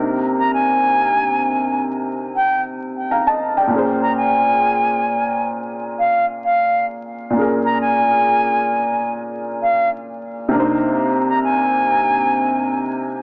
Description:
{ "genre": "hip hop", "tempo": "66 BPM", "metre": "4/4", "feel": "swing 66% on 16ths", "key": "unclear", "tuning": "A4 = 437 Hz", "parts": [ { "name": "felt-muted upright piano", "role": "accompaniment", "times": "0.0-13.2 s", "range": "Bb2 to Bb5", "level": "-19 LUFS", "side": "equal", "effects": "cassette tape, low-pass filter" }, { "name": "bright reedy silver concert flute", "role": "melody", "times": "0.4-12.8 s", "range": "F5 to Bb5", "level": "-17 LUFS", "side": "equal", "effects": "low-pass filter, analog delay" } ], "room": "wet spring reverb, RT60 1.3 s, studio ambience", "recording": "worn, warbling old tape, cassette tape, vinyl crackle, warbly pitch drift, small speaker sound", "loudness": "-15 LUFS", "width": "side -35 dB against mid", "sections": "0.0-13.2 A section", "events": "none", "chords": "0.0 Cm7; 3.7 Bbm7; 10.5 Cm7" }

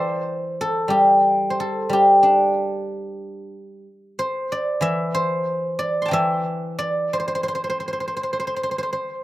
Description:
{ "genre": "chinese traditional, Chinese solo plucked strings", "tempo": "90 BPM", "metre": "4/4", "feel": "rubato", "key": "C gong mode", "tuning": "A4 = 441 Hz", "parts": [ { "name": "guzheng", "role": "solo", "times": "0.0-9.2 s", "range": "E3 to C6", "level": "-19 LUFS", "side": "equal", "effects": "none" } ], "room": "light reverb", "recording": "recorded outdoors, with no room sound", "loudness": "-19 LUFS", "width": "side -16 dB against mid", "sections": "0.0-9.2 A section", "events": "none", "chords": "none" }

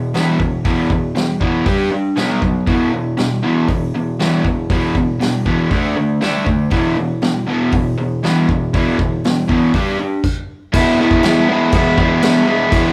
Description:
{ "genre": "garage rock duo or trio", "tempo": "119 BPM", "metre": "4/4", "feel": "straight", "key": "unclear", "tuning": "A4 = 439 Hz", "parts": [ { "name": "raw garage guitar", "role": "riff", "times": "0.0-12.9 s", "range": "E2 to G4", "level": "-17 LUFS", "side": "equal", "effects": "overdrive" }, { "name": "vintage brush drum kit", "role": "drums", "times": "0.1-12.8 s", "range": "crash cymbal, hi-hat, kick drum, snare drum", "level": "-22 LUFS", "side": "equal", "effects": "none" } ], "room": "moderate large studio reverb, RT60 1.1 s", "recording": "band playing live in one room", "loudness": "-16 LUFS", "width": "mono", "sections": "0.0-10.7 A section; 10.7-12.9 B section", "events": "stop 10.2-10.7", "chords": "0.0 E5; 1.7 G5; 2.2 B5; 2.7 E5; 5.7 D5; 6.7 E5; 9.7 G5; 10.2 N.C.; 10.7 E" }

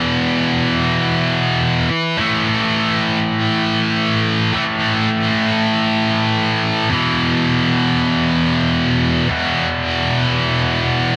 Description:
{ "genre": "metal", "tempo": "free time", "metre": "none", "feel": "none", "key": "unclear", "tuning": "A4 = 440 Hz", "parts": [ { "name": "heavy high-gain guitar", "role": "solo", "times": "0.0-11.2 s", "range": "E2 to A3", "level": "-17 LUFS", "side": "equal", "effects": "distortion, cassette tape" } ], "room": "little or no reverb", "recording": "home recording on cassette", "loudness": "-17 LUFS", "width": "mono", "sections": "0.0-11.2 A section", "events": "none", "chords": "0.0 E5; 2.2 A5; 6.9 E5" }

